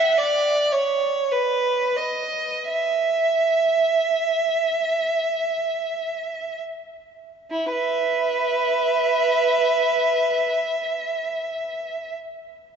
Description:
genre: classical, free, expressive piece for unaccompanied violin.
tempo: free time.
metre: none.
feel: none.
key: unclear.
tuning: A4 = 440 Hz.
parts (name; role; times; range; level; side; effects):
clear violin; solo; 0.0-12.1 s; E4 to E5; -20 LUFS; right 2 dB; none.
room: wet church reverb, RT60 3.4 s.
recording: dark, warm production, nothing above 7.7 kHz.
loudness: -20 LUFS.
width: side -6 dB against mid.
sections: 0.0-7.5 A section; 7.5-11.8 B section.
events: slowing down 0.0-7.5.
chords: none.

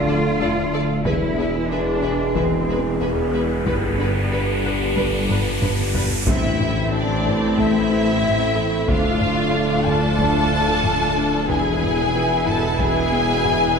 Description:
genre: cinematic, hybrid orchestral and electronic film score.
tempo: 92 BPM.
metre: 4/4.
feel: straight.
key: A minor.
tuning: A4 = 437 Hz.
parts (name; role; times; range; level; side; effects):
dark French horn section; sustained chords; 0.0-13.8 s; B3 to B4; -30 LUFS; left 1 dB; none.
mellow trombone section; sustained chords; 0.0-13.8 s; A2 to A3; -30 LUFS; right 2 dB; none.
warbly tape-like pad; sustained chords; 0.0-13.8 s; B2 to E5; -27 LUFS; left 1 dB; chorus, built-in reverb.
dark detuned saw bass; bass; 0.0-13.8 s; D1 to A1; -30 LUFS; equal; none.
dark tuba; bass; 0.0-13.8 s; E1 to D2; -27 LUFS; equal; none.
rich symphonic cello section; bass; 0.0-13.8 s; D2 to F4; -29 LUFS; equal; none.
rich symphonic double bass section; bass; 0.0-13.8 s; E1 to G2; -28 LUFS; right 1 dB; none.
rich symphonic violin section; melody; 0.1-13.8 s; D5 to A5; -26 LUFS; left 2 dB; none.
warm symphonic violin section; second line; 0.1-13.8 s; D4 to D5; -26 LUFS; left 2 dB; none.
rich symphonic viola section; accompaniment; 0.1-13.8 s; B3 to B4; -29 LUFS; right 1 dB; none.
tight sequenced synth; arpeggios; 0.1-13.6 s; D3 to A4; -30 LUFS; left 2 dB; none.
taiko ensemble; drums; 0.4-13.8 s; none; -27 LUFS; left 1 dB; none.
riser and impact; sound effects; 1.9-8.9 s; none; -28 LUFS; equal; none.
room: wet recital hall reverb, RT60 1.4 s.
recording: recorded in a church or concert hall.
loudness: -17 LUFS.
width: side -6 dB against mid.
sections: 0.0-6.3 A section; 6.3-13.8 B section.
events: riser 1.9-6.3; drum fill 5.3-6.3; impact 6.3-8.9.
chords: 0.0 Dm; 1.1 E; 3.7 G; 6.3 Am; 8.9 Dm; 11.5 E.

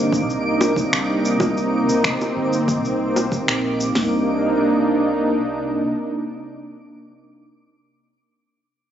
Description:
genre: sunset chillout.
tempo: 94 BPM.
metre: 4/4.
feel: straight.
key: C minor.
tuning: A4 = 440 Hz.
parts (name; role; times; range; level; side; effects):
lush unison pad; sustained chords; 0.0-7.2 s; C3 to Eb4; -19 LUFS; right 1 dB; chorus.
mellow fretless electric bass; bass; 0.0-5.8 s; G1 to C2; -31 LUFS; equal; lush chorus.
twinkling granular texture; texture; 0.0-4.0 s; D6; -32 LUFS; right 1 dB; built-in reverb.
deep house drum kit; drums; 0.1-4.1 s; hi-hat, kick drum, snare drum, toms; -24 LUFS; equal; overdrive.
electronic cabasa and finger snaps; drums; 0.1-3.9 s; none; -25 LUFS; equal; overdrive.
bongos; percussion; 0.6-3.3 s; none; -23 LUFS; equal; none.
room: wet lush hall reverb, RT60 1.7 s.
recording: recorded on a phone in the room, club reverb, compression, nothing above 7.8 kHz.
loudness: -17 LUFS.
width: side -9 dB against mid.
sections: 0.0-4.0 A section; 4.0-6.5 B section.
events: none.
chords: 0.0 Cm9.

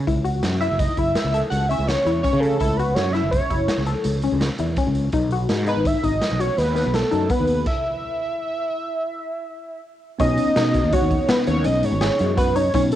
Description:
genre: progressive instrumental, band music in an uneven meter.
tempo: 166 BPM.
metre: 7/4.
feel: straight.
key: unclear.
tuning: A4 = 440 Hz.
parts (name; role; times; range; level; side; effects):
tight sequenced synth; arpeggios; 0.0-13.0 s; B3 to A4; -25 LUFS; left 6 dB; chorus, cassette tape.
fretless electric bass; bass; 0.0-12.9 s; F#1 to C#3; -23 LUFS; right 1 dB; ensemble chorus.
raw garage drum kit; drums; 0.1-13.0 s; crash cymbal, hi-hat, kick drum, snare drum; -25 LUFS; right 1 dB; cassette tape.
wide unison lead; melody; 0.6-13.0 s; A4 to F#5; -23 LUFS; right 1 dB; cassette tape, analog delay.
tine electric piano; accompaniment; 10.2-13.0 s; B3 to D#4; -26 LUFS; right 1 dB; medium stereo tremolo, cassette tape.
room: light reverb.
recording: home recording on cassette.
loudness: -18 LUFS.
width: side -12 dB against mid.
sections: 0.0-10.2 A section; 10.2-13.0 B section.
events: stop 7.7-10.2.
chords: 0.1 A; 5.1 B; 7.7 N.C.; 10.2 Badd9.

